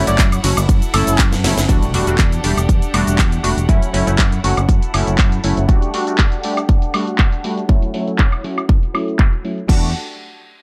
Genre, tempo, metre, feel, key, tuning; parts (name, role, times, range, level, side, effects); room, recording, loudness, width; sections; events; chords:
filtered disco house; 120 BPM; 4/4; straight; E dorian; A4 = 440 Hz
funky polysynth comp; accompaniment; 0.0-9.9 s; F#3 to G4; -24 LUFS; equal; chorus, phaser, cassette tape, sidechain pumping, low-pass filter
clear studio violin section; sustained chords; 0.0-9.9 s; D4 to F#5; -31 LUFS; equal; vintage 12-bit sampler grit, sidechain pumping, low-pass filter
fingered electric bass; bass; 0.0-5.7, 9.7-9.9 s; E1 to F#2; -21 LUFS; equal; sidechain pumping, low-pass filter
muted trumpet section; melody; 0.1-1.3 s; A4 to D5; -26 LUFS; equal; vintage 12-bit sampler grit, sidechain pumping, low-pass filter, tape echo
house drum kit; drums; 0.1-9.8 s; crash cymbal, handclaps, hi-hat, ride cymbal, shaker, snare drum, woodblock; -24 LUFS; equal; sidechain pumping on hats, low-pass filter on hats, sidechain pumping on perc, low-pass filter on perc, sidechain pumping on cymbals, low-pass filter on cymbals, low-pass filter on snare, low-pass filter on room
electronic kick drum; drums; 0.2-9.8 s; -16 LUFS; equal
impact; sound effects; 1.7-3.7 s; -30 LUFS; equal
light reverb; -16 LUFS; mono
0.0-1.7 A section; 1.7-9.7 B section
drop 0.0-1.7; drum fill 1.3-1.7; impact 1.7-3.7; filter sweep on drum 1.7-9.7; filter sweep 1.7-9.7
0.0 F#m7; 1.7 Em11; 3.7 F#m7; 5.7 Dadd11/G; 7.7 F#m7; 9.7 Em11